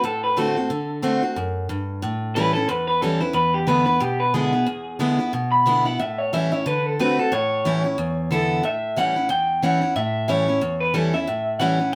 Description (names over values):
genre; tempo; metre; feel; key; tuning
rock; 182 BPM; 4/4; swing 59% on 8ths; A mixolydian; A4 = 440 Hz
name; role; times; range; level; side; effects
electric guitar through a small old amp; melody; 0.0-11.9 s; G4 to B5; -24 LUFS; equal; none
picked steel-string acoustic guitar; accompaniment; 0.0-11.9 s; E2 to F#4; -25 LUFS; equal; none
room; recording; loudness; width
moderate studio reverb, RT60 0.5 s; band playing live in one room; -22 LUFS; mono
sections
0.0-8.6 A section; 8.6-11.9 B section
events
clean electric guitar solo 0.0-8.6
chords
0.0 D7; 2.0 A7; 3.3 E7; 6.0 A7; 6.7 D7; 7.3 A7; 8.0 E5; 8.6 A7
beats
0.04 0.37 | 0.70 1.03 1.36 1.69 | 2.02 2.35 2.68 3.01 | 3.34 3.67 4.01 4.34 | 4.67 5.00 5.33 5.66 | 5.99 6.32 6.65 6.98 | 7.31 7.64 7.97 8.30 | 8.63 8.96 9.29 9.62 | 9.95 10.28 10.61 10.94 | 11.27 11.60